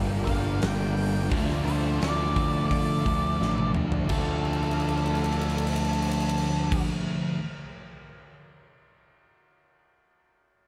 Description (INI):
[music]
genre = rock, shoegaze and dream pop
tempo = 86 BPM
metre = 4/4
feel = straight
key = D minor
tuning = A4 = 440 Hz
[part]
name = analog string pad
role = sustained chords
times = 0.0-6.8 s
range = F4 to A5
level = -40 LUFS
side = equal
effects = ensemble chorus
[part]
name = overdriven semi-hollow guitar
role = riff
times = 0.0-7.4 s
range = G2 to D4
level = -34 LUFS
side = equal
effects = reverse reverb
[part]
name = thick fuzz guitar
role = riff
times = 0.0-7.4 s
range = G2 to D4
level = -34 LUFS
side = equal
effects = distortion, analog chorus
[part]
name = fuzz picked electric bass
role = bass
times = 0.0-6.8 s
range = G1 to D3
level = -31 LUFS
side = equal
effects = overdrive
[part]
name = octave-fuzz lead guitar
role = melody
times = 0.3-6.8 s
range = A4 to G5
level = -35 LUFS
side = equal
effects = distortion, slapback echo
[part]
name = huge arena drum kit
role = drums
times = 0.3-8.3 s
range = crash cymbal, hi-hat, kick drum, ride cymbal, snare drum, toms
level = -34 LUFS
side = equal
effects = none
[sound]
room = light reverb, studio ambience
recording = dark, warm production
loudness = -26 LUFS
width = mono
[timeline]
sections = 0.0-4.1 A section; 4.1-6.9 B section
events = drum fill 3.4-4.1, 4.4-6.7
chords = 0.0 Gm7; 1.3 Dmadd9